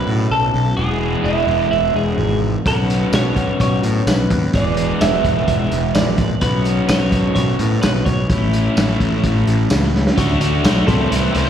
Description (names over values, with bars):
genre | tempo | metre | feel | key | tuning
indie rock | 128 BPM | 4/4 | straight | unclear | A4 = 441 Hz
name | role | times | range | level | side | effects
twelve-string electric guitar | melody | 0.0-11.5 s | E4 to E5 | -22 LUFS | right 2 dB | phaser, slapback echo, digital delay
raw garage guitar | riff | 0.0-11.5 s | E2 to G#4 | -20 LUFS | left 1 dB | overdrive, slapback echo
fuzz picked electric bass | bass | 0.0-11.5 s | E1 to A2 | -19 LUFS | equal | overdrive
vintage drum kit | drums | 2.7-11.5 s | hi-hat, kick drum, snare drum, tambourine | -20 LUFS | equal | none
glockenspiel with hard plastic mallets | second line | 10.2-11.5 s | C6 to C#6 | -30 LUFS | equal | digital delay
room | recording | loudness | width
light reverb | live gig heard through the venue's PA, recital hall reverb | -14 LUFS | side -9 dB against mid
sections
0.0-10.2 A section; 10.2-11.5 B section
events
drum fill 9.9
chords
0.0 Bsus2; 0.8 E; 2.7 Bsus2; 4.5 E; 6.4 Bsus2; 8.3 A; 10.2 D; 10.9 Am/C